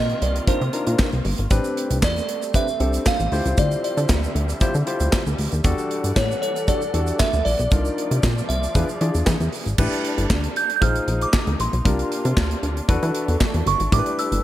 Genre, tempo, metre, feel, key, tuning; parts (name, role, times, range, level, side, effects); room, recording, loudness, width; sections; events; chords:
early-eighties boogie funk; 116 BPM; 4/4; straight; A4 = 440 Hz
delicate synth tine bell; melody; 0.0-14.4 s; C5 to G6; -25 LUFS; right 2 dB; chorus, phaser, slapback echo
muted studio string section; sustained chords; 0.0-14.4 s; C3 to F#5; -32 LUFS; equal
plucky analog bass; bass; 0.0-14.4 s; G1 to E3; -22 LUFS; equal
modern studio drum kit; drums; 0.1-14.4 s; crash cymbal, handclaps, hi-hat, kick drum, snare drum; -22 LUFS; equal; gated reverb
barky tine electric piano; accompaniment; 0.5-14.4 s; C4 to D5; -27 LUFS; left 2 dB; overdrive
tube shaker; percussion; 1.5-9.8 s; -38 LUFS; right 10 dB
little or no reverb; -19 LUFS; side -13 dB against mid
0.0-9.8 A section; 9.8-14.4 B section
0.0 Cm11; 1.5 Am11; 3.3 Dm11; 5.6 Em11; 7.7 Cm11; 8.8 E7b9; 9.8 A9sus4; 10.8 Bb9sus4; 11.9 C9sus4; 12.9 E9sus4; 13.9 A9sus4